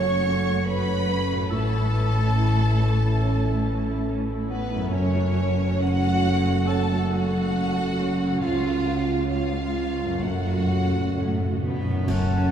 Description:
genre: cinematic, emotional film score for orchestra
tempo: 64-71 BPM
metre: 4/4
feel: rubato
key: F# minor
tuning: A4 = 439 Hz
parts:
  - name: rich studio violin section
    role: melody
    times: 0.0-12.5 s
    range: B4 to C#6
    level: -32 LUFS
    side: left 1 dB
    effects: none
  - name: mellow clarinet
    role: second line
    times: 0.0-12.5 s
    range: B3 to C#5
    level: -33 LUFS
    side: equal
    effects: none
  - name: rich studio violin section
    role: second line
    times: 0.0-12.5 s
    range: B3 to C#5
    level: -33 LUFS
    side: right 2 dB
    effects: none
  - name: dark baby grand piano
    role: accompaniment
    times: 0.0-12.5 s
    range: C#2 to C#5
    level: -30 LUFS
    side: right 2 dB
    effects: none
  - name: warm studio viola section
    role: accompaniment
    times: 0.0-12.5 s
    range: E3 to F#4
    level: -35 LUFS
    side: right 4 dB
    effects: none
  - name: dark French horn section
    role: sustained chords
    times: 0.0-12.5 s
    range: G#3 to C#4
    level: -31 LUFS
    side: right 1 dB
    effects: none
  - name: concert harp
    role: arpeggios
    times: 0.0-12.5 s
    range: F#2 to C#5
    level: -32 LUFS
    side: left 2 dB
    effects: none
  - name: rich studio cello section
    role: bass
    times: 0.0-12.5 s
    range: C#2 to C#4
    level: -27 LUFS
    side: equal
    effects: none
  - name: rich studio double bass section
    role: bass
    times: 0.0-12.5 s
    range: F#1 to C#2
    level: -27 LUFS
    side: equal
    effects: none
  - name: cymbal swell, clash cymbals and concert bass drum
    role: percussion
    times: 8.4-12.5 s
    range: none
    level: -38 LUFS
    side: right 2 dB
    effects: none
  - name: timpani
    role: percussion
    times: 10.2-12.0 s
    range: F#2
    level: -28 LUFS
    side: left 1 dB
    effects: none
  - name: bright silver concert flute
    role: second line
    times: 12.1-12.5 s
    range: A5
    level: -34 LUFS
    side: left 12 dB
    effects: none
  - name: warm oboe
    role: second line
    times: 12.1-12.5 s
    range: F#5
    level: -33 LUFS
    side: right 1 dB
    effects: none
room: wet cathedral reverb, RT60 7.1 s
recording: in a vast, echoing space, small room reverb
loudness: -21 LUFS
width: side -9 dB against mid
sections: 0.0-12.1 A section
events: timpani fill 10.2-12.1; band accent 12.1-12.5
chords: 0.0 F#m; 1.5 A; 4.9 F#m; 8.4 C#; 10.2 F#m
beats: 0.65 | 1.51 2.37 3.22 4.07 | 4.92 5.82 6.69 7.55 | 8.43 9.31 10.23 11.17 | 12.08

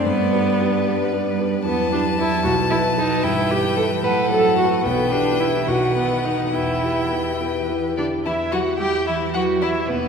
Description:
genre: quick classical-period movement for piano quintet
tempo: 69-76 BPM (dotted quarters)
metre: 6/8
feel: rubato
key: E minor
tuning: A4 = 440 Hz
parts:
  - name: clear violin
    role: melody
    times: 0.0-10.1 s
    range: B3 to A5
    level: -25 LUFS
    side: left 6 dB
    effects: none
  - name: rich violin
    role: second line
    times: 0.0-10.1 s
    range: A4 to G5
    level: -27 LUFS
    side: left 4 dB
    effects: none
  - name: warm cello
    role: second line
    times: 0.0-10.1 s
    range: B2 to G3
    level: -27 LUFS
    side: right 7 dB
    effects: none
  - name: rich viola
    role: accompaniment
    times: 0.0-10.1 s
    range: B3 to B4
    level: -22 LUFS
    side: right 2 dB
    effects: none
  - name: warm concert grand piano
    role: accompaniment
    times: 0.0-10.1 s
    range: B1 to B4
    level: -24 LUFS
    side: equal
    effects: none
room: wet cathedral reverb, RT60 4.4 s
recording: recorded in a church or concert hall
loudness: -18 LUFS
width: side -6 dB against mid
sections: 0.0-8.2 A section; 8.2-10.1 B section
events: none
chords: 0.1 G; 1.7 Em; 2.4 B; 3.2 Em/G; 4.0 F#dim/A; 4.8 Em/B; 5.7 B; 6.5 Em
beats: | 0.07 0.86 | 1.66 2.45 | 3.24 4.04 | 4.85 5.68 | 6.54 7.40 | 8.25 9.07 | 9.89

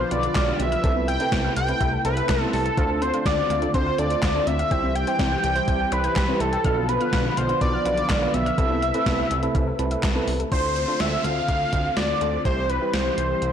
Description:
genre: synth-pop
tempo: 124 BPM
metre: 4/4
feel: straight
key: unclear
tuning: A4 = 440 Hz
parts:
  - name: octave-doubled lead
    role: melody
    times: 0.0-13.5 s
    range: A4 to G5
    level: -24 LUFS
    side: equal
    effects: chorus, phaser, slapback echo
  - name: warm analog pad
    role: sustained chords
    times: 0.0-13.5 s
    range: C3 to B4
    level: -30 LUFS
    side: left 1 dB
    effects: chorus
  - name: soft round pluck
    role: arpeggios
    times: 0.0-10.5 s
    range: B3 to G6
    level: -33 LUFS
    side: left 4 dB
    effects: chorus, slapback echo
  - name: fat analog bass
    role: bass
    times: 0.0-13.5 s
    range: B1 to D2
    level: -27 LUFS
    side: equal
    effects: none
  - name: soft electric-piano-like synth keys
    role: accompaniment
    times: 0.1-13.4 s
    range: B3 to D5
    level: -30 LUFS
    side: right 3 dB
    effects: chorus, tremolo
  - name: gated 80s digital drum machine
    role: drums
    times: 0.1-13.5 s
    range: handclaps, hi-hat, kick drum, snare drum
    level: -26 LUFS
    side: equal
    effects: gated reverb, gated reverb snare
  - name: downlifter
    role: sound effects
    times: 10.5-13.5 s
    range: none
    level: -35 LUFS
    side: equal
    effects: none
room: moderate lush hall reverb, RT60 1.8 s, digital ambience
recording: blown-out, overdriven recording, overdrive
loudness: -20 LUFS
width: side -8 dB against mid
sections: 0.0-10.5 A section; 10.5-13.5 B section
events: none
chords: 0.0 Bdim; 0.8 Amadd9/C; 2.8 Dm7; 4.7 C; 6.6 Bdim; 8.6 Amadd9/C; 10.5 Dm7; 12.5 C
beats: 0.35 | 0.84 1.32 1.81 2.29 | 2.77 3.26 3.74 4.23 | 4.71 5.19 5.68 6.16 | 6.64 7.13 7.61 8.10 | 8.58 9.06 9.55 10.03 | 10.52 11.00 11.48 11.97 | 12.45 12.94 13.42

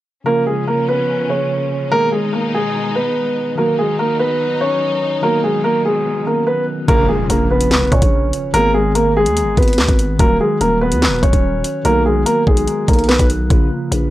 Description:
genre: hip hop, drill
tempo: 145 BPM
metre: 4/4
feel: half-time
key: Bb phrygian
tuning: A4 = 438 Hz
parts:
  - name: mellow tine electric piano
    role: accompaniment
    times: 0.2-14.1 s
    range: Db3 to Ab4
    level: -23 LUFS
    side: equal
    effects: medium stereo tremolo
  - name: dark baby grand piano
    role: melody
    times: 0.3-13.3 s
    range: Ab3 to Db5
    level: -16 LUFS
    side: equal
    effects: tape echo
  - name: clear symphonic string section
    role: sustained chords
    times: 0.3-6.9 s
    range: Cb3 to Eb4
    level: -27 LUFS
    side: left 2 dB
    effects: none
  - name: growling 808-style bass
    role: bass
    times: 6.9-14.1 s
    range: Eb1 to Bb2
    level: -18 LUFS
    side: equal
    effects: none
  - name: drill drum kit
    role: drums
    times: 6.9-14.0 s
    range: handclaps, hi-hat, kick drum, snare drum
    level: -15 LUFS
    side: equal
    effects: none
  - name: impact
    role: sound effects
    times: 7.0-8.5 s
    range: none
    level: -25 LUFS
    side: equal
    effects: none
room: little or no reverb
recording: dry, gritty hardware recording, cassette tape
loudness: -13 LUFS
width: side -15 dB against mid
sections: 0.3-6.9 A section; 6.9-14.1 B section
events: impact 6.9-8.5; break 13.5-14.1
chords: 0.3 Bbm; 1.9 Abm; 3.6 Ebm; 5.2 B; 6.9 Bbm; 8.5 Abm; 10.2 Ebm; 11.8 B; 13.5 Bbm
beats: | 0.26 0.68 1.09 1.50 | 1.92 2.33 2.75 3.16 | 3.57 3.99 4.40 4.81 | 5.23 5.64 6.06 6.47 | 6.88 7.30 7.71 8.12 | 8.54 8.95 9.37 9.78 | 10.19 10.61 11.02 11.44 | 11.85 12.26 12.68 13.09 | 13.50 13.92

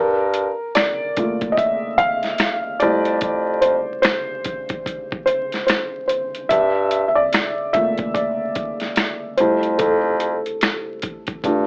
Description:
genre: lo-fi hip hop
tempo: 73 BPM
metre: 4/4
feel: swing 61% on 16ths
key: unclear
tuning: A4 = 440 Hz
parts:
  - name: felt-muted upright piano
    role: accompaniment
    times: 0.0-11.7 s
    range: G3 to F5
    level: -22 LUFS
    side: equal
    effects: cassette tape, low-pass filter
  - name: mellow bassoon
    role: bass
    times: 0.0-11.7 s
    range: F2 to G2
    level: -22 LUFS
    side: equal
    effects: none
  - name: boom bap sampler-style drum kit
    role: drums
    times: 0.3-11.7 s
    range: finger snaps, hi-hat, kick drum, snare drum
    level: -24 LUFS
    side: equal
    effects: overdrive
room: moderate studio reverb, RT60 0.5 s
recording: vinyl crackle, AM radio sound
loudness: -20 LUFS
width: mono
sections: 0.0-11.7 A section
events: felt piano solo 0.0-11.7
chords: 0.0 Gm9; 2.8 Fmaj9; 6.5 Gm9; 9.4 Fmaj9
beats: 0.76 1.58 2.40 | 3.22 4.04 4.86 5.69 | 6.51 7.33 8.15 8.97 | 9.80 10.62 11.44

